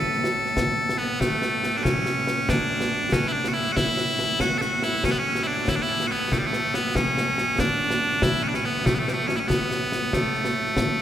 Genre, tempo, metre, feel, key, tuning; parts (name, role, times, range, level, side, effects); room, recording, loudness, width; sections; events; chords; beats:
scottish traditional, Scottish pipe music; 94 BPM (dotted quarters); 6/8; straight; A major; A4 = 440 Hz
loud bright bagpipes; melody; 0.0-11.0 s; A2 to A4; -23 LUFS; equal
concert snare drum and concert bass drum; drums; 0.1-11.0 s; -25 LUFS; equal
wet cathedral reverb, RT60 5.3 s; recorded in a church or concert hall; -21 LUFS; side -10 dB against mid
0.0-1.2 A section; 1.2-11.0 A section
0.57 | 1.21 1.84 | 2.48 3.12 | 3.76 4.40 | 5.04 5.67 | 6.31 6.95 | 7.59 8.23 | 8.86 9.50 | 10.14 10.78